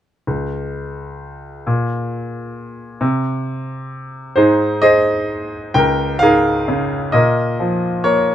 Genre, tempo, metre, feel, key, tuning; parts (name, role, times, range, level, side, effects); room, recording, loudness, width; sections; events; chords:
classical, lyrical solo piano; 44 BPM (dotted quarters); 6/8; rubato; Db lydian; A4 = 443 Hz
bright grand piano; solo; 0.3-8.3 s; Db2 to G5; -16 LUFS; equal
light reverb; -15 LUFS; side -11 dB against mid
0.3-5.8 A section; 5.8-8.3 B section
0.3 N.C.; 4.4 Ab; 5.8 Db6; 7.2 Bb5